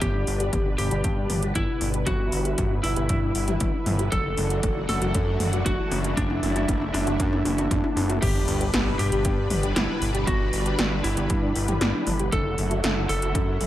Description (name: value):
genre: synthwave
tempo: 117 BPM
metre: 4/4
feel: straight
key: unclear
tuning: A4 = 441 Hz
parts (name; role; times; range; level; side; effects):
- lightly driven lead guitar; melody; 0.0-13.7 s; D4 to A4; -29 LUFS; equal; digital delay
- analog string pad; sustained chords; 0.0-13.7 s; B2 to B4; -30 LUFS; equal; ensemble chorus, sidechain pumping
- soft round pluck; arpeggios; 0.0-13.6 s; B3 to G4; -34 LUFS; left 1 dB; lush chorus, digital delay
- fat analog bass; bass; 0.0-13.7 s; F#1 to G2; -26 LUFS; equal; none
- 80s electronic pad drums; drums; 0.0-13.7 s; crash cymbal, hi-hat, snare drum, toms; -29 LUFS; equal; gated reverb on snare and toms, overdrive, gated reverb
- electronic kick drum; drums; 0.0-13.5 s; none; -28 LUFS; equal; overdrive
- sub drop; sound effects; 8.2-10.3 s; none; -33 LUFS; equal; none
room: light reverb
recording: none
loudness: -22 LUFS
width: side -13 dB against mid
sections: 0.0-8.2 A section; 8.2-13.7 B section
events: drum fill 0.0-8.2; impact 8.2-10.3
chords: 0.0 G; 4.1 Dadd9/F#; 8.2 G; 12.3 Dadd9/F#